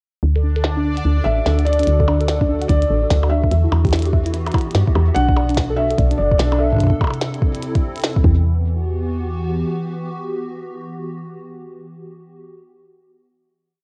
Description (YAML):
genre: IDM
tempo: 146 BPM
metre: 4/4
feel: swing 62% on 16ths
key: E minor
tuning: A4 = 441 Hz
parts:
  - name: hollow soft pad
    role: sustained chords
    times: 0.6-12.5 s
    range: B2 to A4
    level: -29 LUFS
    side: equal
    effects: ensemble chorus, cassette tape
  - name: soft round pluck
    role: arpeggios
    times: 0.2-8.6 s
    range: D4 to F#5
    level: -28 LUFS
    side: equal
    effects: chorus, cassette tape, tape echo
  - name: woody FM bass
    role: bass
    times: 0.2-9.6 s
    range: F#1 to G2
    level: -20 LUFS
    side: equal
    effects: none
  - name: bubbling stepped-filter texture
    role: texture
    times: 0.4-1.9 s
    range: D4 to D5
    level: -36 LUFS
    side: equal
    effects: chorus, built-in reverb, cassette tape
  - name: glitchy drum kit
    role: drums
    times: 0.4-8.2 s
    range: hi-hat, percussion blips, snare drum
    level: -28 LUFS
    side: equal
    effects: overdrive, low-pass filter on hats, studio reverb, cassette tape, low-pass filter on snare, low-pass filter on perc
  - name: felt-muted upright piano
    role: melody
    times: 1.2-7.2 s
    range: D5 to F#5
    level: -25 LUFS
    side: equal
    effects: cassette tape, tape echo
  - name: electronic kick drum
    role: drums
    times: 2.0-8.3 s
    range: none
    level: -20 LUFS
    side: equal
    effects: overdrive, studio reverb, cassette tape
room: moderate small room ambience, RT60 0.5 s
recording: home recording on cassette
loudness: -18 LUFS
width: mono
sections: 0.2-1.9 intro; 1.9-8.4 groove; 8.4-11.7 final chord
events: filter sweep on drum 0.2-1.9; filter sweep on synth arpeggio sound 0.2-1.9; drum fill 1.7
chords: 0.2 D; 3.5 Emadd9; 5.2 Bm7; 6.8 C6; 8.2 E5; 8.4 Emadd9